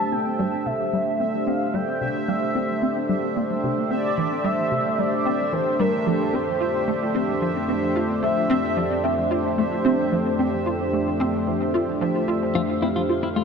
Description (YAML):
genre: ambient, sequencer-driven space music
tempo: 111 BPM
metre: 4/4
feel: straight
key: F major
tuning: A4 = 440 Hz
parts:
  - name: mellow horn-like synth lead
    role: melody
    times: 0.0-12.0 s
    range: A4 to A5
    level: -27 LUFS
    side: equal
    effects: phaser, analog chorus, analog delay
  - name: sweeping resonant pad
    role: sustained chords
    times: 0.0-13.4 s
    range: F2 to C5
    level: -24 LUFS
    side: equal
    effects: chorus
  - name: hollow square pluck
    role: riff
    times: 0.0-13.4 s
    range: C3 to F4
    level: -26 LUFS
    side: equal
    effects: ensemble chorus, analog delay
  - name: bubbling stepped-filter texture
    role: texture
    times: 0.0-13.4 s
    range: E5 to F5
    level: -33 LUFS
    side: right 3 dB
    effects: chorus, built-in reverb
  - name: clean electric guitar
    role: arpeggios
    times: 12.6-13.4 s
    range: E4 to F4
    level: -28 LUFS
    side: left 3 dB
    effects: auto-pan, analog delay
room: wet lush hall reverb, RT60 2.8 s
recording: none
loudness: -20 LUFS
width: side -6 dB against mid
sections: 0.0-13.4 A section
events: filter sweep on synth arpeggio sound 0.0-13.4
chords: 0.0 C; 6.1 Fmaj9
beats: 0.12 0.66 1.20 | 1.74 2.28 2.82 3.36 | 3.90 4.45 4.99 5.53 | 6.07 6.61 7.15 7.69 | 8.23 8.77 9.31 9.85 | 10.39 10.93 11.47 12.01 | 12.55 13.09